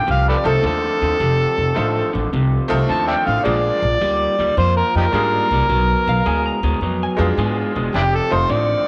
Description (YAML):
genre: electric blues shuffle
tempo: 107 BPM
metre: 4/4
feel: swing 67% on 8ths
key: F mixolydian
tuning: A4 = 441 Hz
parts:
  - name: overdriven harmonica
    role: melody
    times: 0.0-8.9 s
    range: D4 to A5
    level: -21 LUFS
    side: equal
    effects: none
  - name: electric guitar through a small old amp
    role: riff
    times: 0.0-8.8 s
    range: F2 to G#3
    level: -26 LUFS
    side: equal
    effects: none
  - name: upright bass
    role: bass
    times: 0.1-8.7 s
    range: E1 to Ab2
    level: -23 LUFS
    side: equal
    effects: none
  - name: bright upright piano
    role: accompaniment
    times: 0.4-8.8 s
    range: Ab3 to A4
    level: -26 LUFS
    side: equal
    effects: none
  - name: electric slide guitar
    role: second line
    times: 6.1-7.6 s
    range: F5 to Bb5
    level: -30 LUFS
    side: equal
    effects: none
room: moderate echo chamber reverb, RT60 2.0 s, studio reverb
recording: none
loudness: -18 LUFS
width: mono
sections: 0.0-8.9 A section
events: none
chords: 0.0 F7; 3.4 Bb7; 5.7 Bdim7; 7.9 F7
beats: 0.08 0.64 | 1.20 1.76 2.32 2.89 | 3.45 4.01 4.57 5.13 | 5.69 6.25 6.82 7.38 | 7.94 8.50